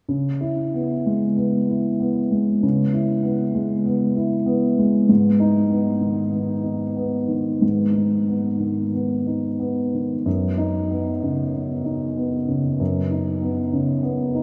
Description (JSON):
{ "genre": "neoclassical minimalist piano", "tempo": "95 BPM", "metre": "4/4", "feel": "rubato", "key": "unclear", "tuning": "A4 = 441 Hz", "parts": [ { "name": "dark upright piano", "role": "solo", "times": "0.1-14.4 s", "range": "F#2 to E4", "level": "-21 LUFS", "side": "equal", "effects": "none" } ], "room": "wet cathedral reverb, RT60 5.3 s", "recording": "in a vast, echoing space", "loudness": "-21 LUFS", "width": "mono", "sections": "0.1-14.4 A section", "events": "none", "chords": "0.1 C#m7; 5.1 G#m; 10.3 Badd9/F#" }